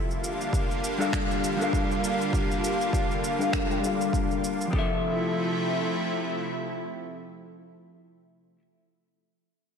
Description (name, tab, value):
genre	sunset chillout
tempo	100 BPM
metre	4/4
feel	swing 56% on 16ths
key	F major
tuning	A4 = 438 Hz
part	lush unison pad	sustained chords	0.0-7.9 s	C3 to F4	-29 LUFS	equal	chorus
part	electronic cabasa and finger snaps	drums	0.1-4.7 s	none	-36 LUFS	right 1 dB	overdrive, studio reverb, slapback echo
part	electronic kick drum	drums	0.5-4.9 s	none	-29 LUFS	equal	overdrive, studio reverb
part	vintage hollow-body jazz guitar	accompaniment	1.0-8.6 s	F3 to G5	-29 LUFS	moving between left 4 dB and right 9 dB	auto-pan, low-pass filter, ping-pong delay, slapback echo
room	wet lush hall reverb, RT60 1.7 s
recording	big arena sound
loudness	-24 LUFS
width	side -6 dB against mid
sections	0.0-4.7 A section; 4.7-7.1 B section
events	filter sweep on hollow-body jazz guitar 0.0-4.7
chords	0.0 Gm7; 4.7 Fmaj7